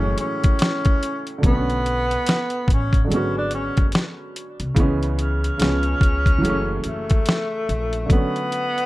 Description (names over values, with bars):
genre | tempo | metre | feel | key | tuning
lo-fi hip hop | 72 BPM | 4/4 | swing 59% on 16ths | F# minor | A4 = 441 Hz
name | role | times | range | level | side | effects
breathy tenor saxophone | melody | 0.0-8.9 s | A3 to D4 | -24 LUFS | equal | plate reverb, tape echo
warm upright piano | accompaniment | 0.0-8.9 s | A2 to G#4 | -26 LUFS | right 1 dB | cassette tape, plate reverb
upright bass | bass | 0.0-8.0 s | F#1 to C#2 | -25 LUFS | equal | none
boom bap sampler-style drum kit | drums | 0.2-8.9 s | hi-hat, kick drum, snare drum | -19 LUFS | equal | none
room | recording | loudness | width
light reverb | none | -18 LUFS | side -18 dB against mid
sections
0.0-1.4 A section; 1.4-8.9 B section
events
none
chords
0.0 F#m7; 1.4 Bm7; 3.1 G#m7b5; 4.8 C#m7; 5.6 C#7; 6.4 F#m7; 8.1 Bm7